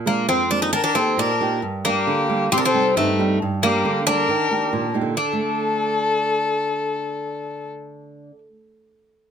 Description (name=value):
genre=greek folk, Greek bouzouki band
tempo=136 BPM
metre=2/4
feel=straight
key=unclear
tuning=A4 = 437 Hz
part: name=flamenco guitar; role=accompaniment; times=0.0-8.5 s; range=F2 to G4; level=-24 LUFS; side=right 5 dB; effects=none
part: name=Greek bouzouki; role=melody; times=0.1-8.4 s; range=A3 to Eb4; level=-21 LUFS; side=left 2 dB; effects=none
part: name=warm violin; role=second line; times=0.8-7.7 s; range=Eb4 to Bb4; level=-23 LUFS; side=left 4 dB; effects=none
room=moderate small room reverb, RT60 0.5 s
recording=close, detailed microphones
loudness=-18 LUFS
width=side -7 dB against mid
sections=0.0-5.2 A section; 5.2-6.9 B section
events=none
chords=0.0 Bb7; 0.7 Eb; 1.6 Gm; 2.5 Cm; 3.4 Gm; 4.3 Eb; 5.2 D5